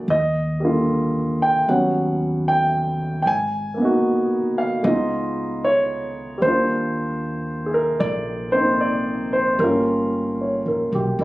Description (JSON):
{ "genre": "jazz ballad", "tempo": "76 BPM", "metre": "4/4", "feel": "swing 66% on 8ths", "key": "Eb major", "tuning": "A4 = 441 Hz", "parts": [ { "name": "warm grand piano", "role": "accompaniment", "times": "0.0-11.2 s", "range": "D3 to Ab5", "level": "-19 LUFS", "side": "equal", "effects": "none" }, { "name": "upright bass", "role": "bass", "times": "0.0-11.2 s", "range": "G1 to Eb2", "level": "-28 LUFS", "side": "equal", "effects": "none" } ], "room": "light reverb", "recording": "recorded on a phone in the room, studio reverb, compression", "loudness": "-18 LUFS", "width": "side -18 dB against mid", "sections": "0.0-11.2 A section", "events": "none", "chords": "0.1 Ebmaj9; 1.7 Eb7alt; 3.3 Abm7; 4.8 Db9; 6.4 Ebmaj9; 9.6 Gm7b5" }